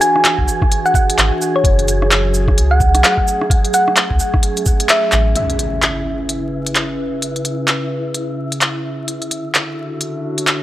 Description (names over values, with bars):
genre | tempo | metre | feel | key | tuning
future garage | 129 BPM | 4/4 | swing 60% on 16ths | unclear | A4 = 440 Hz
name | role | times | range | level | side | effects
thumb-piano-like synth pluck | melody | 0.0-5.4 s | C#5 to G#5 | -18 LUFS | equal | chorus, tape echo
warbly tape-like pad | sustained chords | 0.0-10.6 s | C#3 to E5 | -22 LUFS | right 1 dB | chorus, built-in reverb, sidechain pumping
organic electronic drum kit | drums | 0.0-10.6 s | cabasa, handclaps, hi-hat, rim click | -16 LUFS | equal | overdrive, studio ambience
wind-like tuned noise texture | texture | 0.0-10.6 s | E4 to G#4 | -28 LUFS | equal | built-in reverb
warm sub bass | bass | 0.4-5.3 s | F#1 to C#2 | -15 LUFS | equal | sidechain pumping
electronic kick drum | drums | 0.4-4.8 s | none | -16 LUFS | equal | studio ambience
impact | sound effects | 5.4-7.2 s | none | -26 LUFS | equal | none
room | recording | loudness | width
light reverb, digital ambience | dry, gritty hardware recording, vinyl crackle | -14 LUFS | side -14 dB against mid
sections
0.0-5.4 A section; 5.4-10.6 B section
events
band accent 4.9; impact 5.4-7.2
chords
0.0 E7; 1.6 F#m7; 5.4 C#m7; 9.1 Dmaj9